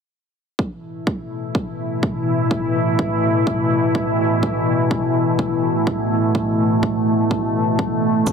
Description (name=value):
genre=melodic techno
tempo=125 BPM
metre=4/4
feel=straight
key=unclear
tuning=A4 = 440 Hz
part: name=evolving wavetable pad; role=sustained chords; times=0.9-8.3 s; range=B2 to F5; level=-19 LUFS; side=equal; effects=chorus, built-in reverb, sidechain pumping
part: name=analog drone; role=drone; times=1.0-8.3 s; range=A2 to E3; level=-24 LUFS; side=equal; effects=chorus, sidechain pumping
part: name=electronic kick drum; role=drums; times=0.6-8.3 s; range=none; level=-22 LUFS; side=right 1 dB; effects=high-pass filter on kick
part: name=brassy analog pad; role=stabs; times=8.3 s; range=F3 to F4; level=-27 LUFS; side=left 3 dB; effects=chorus, sidechain pumping
part: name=shaker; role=drums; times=8.3 s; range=none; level=-28 LUFS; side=right 7 dB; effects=overdrive
room=moderate lush hall reverb, RT60 2.2 s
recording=dense, heavily limited modern master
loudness=-17 LUFS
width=side -6 dB against mid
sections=0.6-8.3 A section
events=none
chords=0.6 Asus2